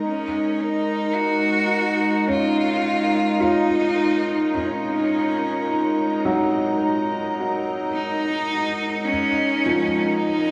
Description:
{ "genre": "ambient", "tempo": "53 BPM", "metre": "4/4", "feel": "straight", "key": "unclear", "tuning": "A4 = 440 Hz", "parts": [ { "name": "rich cello", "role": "melody", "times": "0.0-10.5 s", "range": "Db4 to Gb4", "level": "-27 LUFS", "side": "equal", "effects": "diffuse ambient delay" }, { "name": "evolving wavetable pad", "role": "sustained chords", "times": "0.0-10.5 s", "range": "Ab3 to Bb5", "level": "-24 LUFS", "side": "equal", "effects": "chorus, built-in reverb" }, { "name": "felt-muted upright piano", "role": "arpeggios", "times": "2.3-10.5 s", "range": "F3 to F4", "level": "-28 LUFS", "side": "equal", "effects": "diffuse ambient delay" } ], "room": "wet plate reverb, RT60 2.5 s", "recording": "dreamy mix soaked in reverb, cassette tape", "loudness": "-22 LUFS", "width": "mono", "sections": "0.0-10.5 A section", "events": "filter sweep on ambient pad 0.0-10.5", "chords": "0.0 Ab9sus4; 9.1 Gb6" }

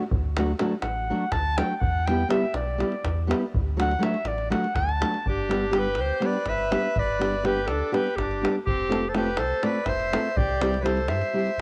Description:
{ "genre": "balkan folk, Balkan wedding band", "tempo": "246 BPM (eighths)", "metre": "7/8", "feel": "straight", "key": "D major, G mixolydian from 5.2 s", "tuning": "A4 = 440 Hz", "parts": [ { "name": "nylon-string guitar", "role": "accompaniment", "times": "0.0-11.5 s", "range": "F#3 to A4", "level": "-30 LUFS", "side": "equal", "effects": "none" }, { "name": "sub bass with octave", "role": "bass", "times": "0.1-11.6 s", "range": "F1 to G2", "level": "-32 LUFS", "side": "equal", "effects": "none" }, { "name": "davul", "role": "percussion", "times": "0.1-11.5 s", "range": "none", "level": "-32 LUFS", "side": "equal", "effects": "none" }, { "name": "clear clarinet", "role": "melody", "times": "0.8-11.6 s", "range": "G4 to A5", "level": "-30 LUFS", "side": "equal", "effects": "cassette tape" }, { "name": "accordion", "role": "second line", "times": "5.3-11.6 s", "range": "C4 to C5", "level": "-33 LUFS", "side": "equal", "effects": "none" } ], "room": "light reverb", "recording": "home recording on cassette", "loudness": "-25 LUFS", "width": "mono", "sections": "0.0-5.2 A section; 5.2-11.6 B section", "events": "clarinet solo 0.0-5.2", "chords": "0.0 D; 1.8 Em; 3.5 D; 5.2 G; 8.7 F; 10.4 C" }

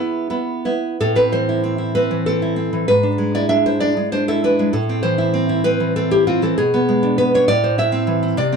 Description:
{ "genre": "romantic piece for solo classical guitar", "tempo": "65 BPM (dotted quarters)", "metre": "6/8", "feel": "uneven beats, rubato", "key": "A minor", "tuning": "A4 = 442 Hz", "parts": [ { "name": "nylon-string guitar", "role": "solo", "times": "0.0-8.6 s", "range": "G#2 to E5", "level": "-16 LUFS", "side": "equal", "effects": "none" } ], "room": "light reverb", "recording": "dark, warm production", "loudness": "-15 LUFS", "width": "side -6 dB against mid", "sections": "1.0-8.6 A section", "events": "none", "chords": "0.0 E; 1.0 Am; 2.9 E7/G#; 4.7 Am; 6.6 G#dim/B; 7.5 Am" }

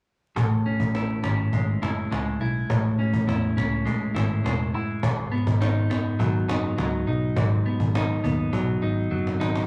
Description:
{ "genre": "indie pop, bedroom pop", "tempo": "103 BPM", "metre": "4/4", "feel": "straight", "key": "unclear", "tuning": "A4 = 441 Hz", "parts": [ { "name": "clean electric guitar", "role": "accompaniment", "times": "0.4-9.7 s", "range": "G#2 to E4", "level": "-27 LUFS", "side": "equal", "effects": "warbly pitch drift" }, { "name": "vintage muted picked electric bass", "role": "bass", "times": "0.4-9.6 s", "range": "E1 to E2", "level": "-30 LUFS", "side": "equal", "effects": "none" }, { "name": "cajon", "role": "drums", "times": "0.4-9.7 s", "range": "none", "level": "-32 LUFS", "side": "equal", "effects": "none" } ], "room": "wet studio ambience, RT60 0.5 s", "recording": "vinyl crackle", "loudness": "-25 LUFS", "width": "mono", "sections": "0.4-9.7 A section", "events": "drum fill 8.5-9.7", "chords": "0.4 Amaj7; 5.0 G#m7" }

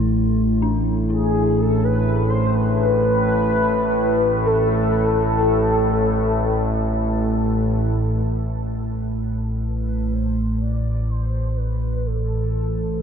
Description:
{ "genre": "dark ambient drone", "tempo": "free time", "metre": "none", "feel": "none", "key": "A minor", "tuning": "A4 = 440 Hz", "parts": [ { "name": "dark detuned synth bell", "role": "arpeggios", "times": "0.0-8.3 s", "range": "D4 to E4", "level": "-32 LUFS", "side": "left 2 dB", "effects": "chorus, phaser, ping-pong delay" }, { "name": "analog drone", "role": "drone", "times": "0.0-13.0 s", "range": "A1 to A2", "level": "-19 LUFS", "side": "equal", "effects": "chorus" }, { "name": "mellow horn-like synth lead", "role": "melody", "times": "1.1-13.0 s", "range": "G#4 to D5", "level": "-23 LUFS", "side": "left 1 dB", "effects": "phaser, ensemble chorus, ping-pong delay" } ], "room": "moderate huge ambient reverb, RT60 8.5 s", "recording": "none", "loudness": "-18 LUFS", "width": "side -7 dB against mid", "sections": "0.0-8.2 A section; 8.2-13.0 B section", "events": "fade-out on synth bell 0.0-8.2; fade-in on soft synth lead 8.2-13.0", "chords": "0.0 A5; 8.2 N.C." }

